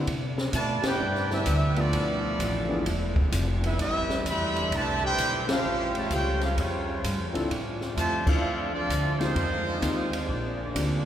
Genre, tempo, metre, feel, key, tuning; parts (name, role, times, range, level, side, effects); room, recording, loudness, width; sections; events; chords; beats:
jazz, big band swing; 129 BPM; 4/4; swing 66% on 8ths; C major; A4 = 436 Hz
dark baby grand piano; accompaniment; 0.0-11.0 s; F3 to C5; -34 LUFS; left 2 dB
upright bass; bass; 0.0-11.1 s; E1 to C3; -30 LUFS; equal
warm saxophone section; sustained chords; 0.1-11.1 s; C3 to F4; -37 LUFS; left 2 dB
open jazz drum kit; drums; 0.1-10.9 s; crash cymbal, hi-hat, kick drum, ride cymbal, snare drum; -31 LUFS; equal
clear trumpet section; melody; 0.5-10.6 s; G3 to B5; -29 LUFS; right 1 dB
warm trombone section; second line; 0.5-10.6 s; B2 to G4; -34 LUFS; right 2 dB
wet cathedral reverb, RT60 7.1 s; recorded in a church or concert hall; -24 LUFS; side -10 dB against mid
0.1-11.1 A section
band accent 0.8, 5.4, 8.2
0.1 Cmaj9; 1.9 Bm7b5; 2.9 E7b9; 3.8 Am11; 5.6 A7alt; 7.5 Dm9; 9.4 Fm7; 10.3 Bb9
| 0.07 0.53 1.00 1.46 | 1.93 2.39 2.85 3.32 | 3.78 4.25 4.71 5.17 | 5.64 6.10 6.57 7.03 | 7.50 7.96 8.43 8.89 | 9.36 9.82 10.29 10.75